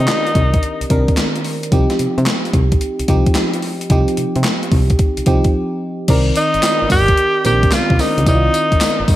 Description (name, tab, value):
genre	R&B, new jack swing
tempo	110 BPM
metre	4/4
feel	swing 67% on 16ths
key	C minor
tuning	A4 = 440 Hz
part	breathy tenor saxophone	melody	0.0-1.1, 6.4-9.2 s	Eb4 to G4	-16 LUFS	equal	none
part	FM electric piano	accompaniment	0.0-9.2 s	Eb3 to D5	-20 LUFS	right 1 dB	chorus
part	solid FM bass	bass	0.0-9.2 s	G1 to C3	-17 LUFS	equal	none
part	gated 80s digital drum machine	drums	0.1-9.2 s	crash cymbal, handclaps, hi-hat, kick drum, snare drum, tambourine	-16 LUFS	equal	gated reverb, gated reverb snare, overdrive
room	light reverb, digital ambience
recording	none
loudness	-13 LUFS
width	side -14 dB against mid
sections	0.0-6.1 A section; 6.1-9.2 B section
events	break 5.5-6.1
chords	0.0 Cm9; 1.7 Eb69/C; 6.1 Cm9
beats	0.08 0.63 1.17 | 1.72 2.26 2.81 3.35 | 3.90 4.45 4.99 5.54 | 6.08 6.63 7.17 7.72 | 8.26 8.81